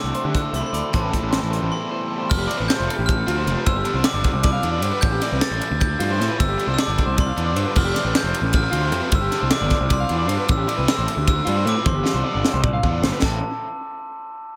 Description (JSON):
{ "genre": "math rock and midwest emo", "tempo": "308 BPM (eighths)", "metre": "7/8", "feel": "straight", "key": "A minor", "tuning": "A4 = 444 Hz", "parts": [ { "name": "glockenspiel with brass mallets", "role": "melody", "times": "0.0-13.4 s", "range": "A5 to A6", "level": "-29 LUFS", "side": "equal", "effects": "analog delay" }, { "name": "electric guitar through a small old amp", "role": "accompaniment", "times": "0.0-2.8 s", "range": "E2 to C4", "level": "-35 LUFS", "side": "equal", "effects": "lush chorus, analog delay" }, { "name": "electric guitar through a small old amp", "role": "arpeggios", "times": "0.0-13.4 s", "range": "F4 to F5", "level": "-30 LUFS", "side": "equal", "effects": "analog delay" }, { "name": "overdriven electric guitar", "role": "riff", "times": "0.0-13.4 s", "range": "A2 to F#4", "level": "-33 LUFS", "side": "equal", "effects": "analog delay" }, { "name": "fuzz picked electric bass", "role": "bass", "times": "0.0-13.4 s", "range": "F1 to D3", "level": "-26 LUFS", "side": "equal", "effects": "overdrive" }, { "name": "crisp fusion drum kit", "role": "drums", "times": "0.1-13.3 s", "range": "crash cymbal, hi-hat, kick drum, ride cymbal, snare drum, toms", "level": "-25 LUFS", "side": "equal", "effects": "none" } ], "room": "light reverb, small room ambience", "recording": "echo-heavy mix", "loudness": "-21 LUFS", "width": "mono", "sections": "0.0-2.3 A section; 2.3-13.2 B section; 13.2-14.6 C section", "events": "break 1.7-2.3; drum fill 11.9-13.2", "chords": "0.0 D9; 0.9 Am7; 2.3 F6; 3.7 G7sus4; 5.0 Am7; 6.4 G7sus4; 7.8 F6; 9.1 G7sus4; 10.5 Am7; 11.9 G7sus4; 13.2 A5" }